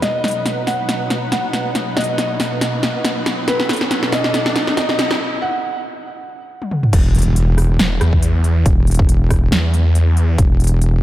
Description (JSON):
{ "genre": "heavy wobble dubstep", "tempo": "139 BPM", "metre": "4/4", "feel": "swing 55% on 16ths, half-time", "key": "unclear", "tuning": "A4 = 439 Hz", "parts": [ { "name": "felt-muted upright piano", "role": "melody", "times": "0.0-6.9 s", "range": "B4 to F#5", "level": "-23 LUFS", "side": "equal", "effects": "diffuse ambient delay" }, { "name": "supersaw chords", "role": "sustained chords", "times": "0.0-5.2 s", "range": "B2 to F#5", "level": "-24 LUFS", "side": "equal", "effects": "ensemble chorus, sidechain pumping, low-pass filter" }, { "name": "big-room dance drum kit", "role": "drums", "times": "0.0-10.9 s", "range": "crash cymbal, hi-hat, rim click, snare drum, toms", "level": "-20 LUFS", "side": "equal", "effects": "overdrive" }, { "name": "riser and impact", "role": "sound effects", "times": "1.3-8.7 s", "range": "none", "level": "-27 LUFS", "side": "equal", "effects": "none" }, { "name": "wobble bass", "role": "bass", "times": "6.9-11.0 s", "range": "E1", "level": "-14 LUFS", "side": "equal", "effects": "chorus, overdrive" }, { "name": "electronic kick drum", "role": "drums", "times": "6.9-10.5 s", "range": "none", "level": "-15 LUFS", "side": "equal", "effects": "none" }, { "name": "snarling distorted saw bass", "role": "bass", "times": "7.8-10.4 s", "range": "E1 to E2", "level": "-14 LUFS", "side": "equal", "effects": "overdrive" } ], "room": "moderate church reverb, RT60 3.0 s", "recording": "dreamy mix soaked in reverb", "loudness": "-14 LUFS", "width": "side -14 dB against mid", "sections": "0.0-6.9 A section; 6.9-11.0 B section", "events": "build-up 0.0-6.9; drum fill 0.0-5.2, 6.6-6.9; filter sweep on supersaw synth 0.0-6.9; riser 1.3-5.2; break 5.2-6.9; drop 6.9-11.0; impact 6.9-8.7", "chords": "0.0 B; 6.9 N.C." }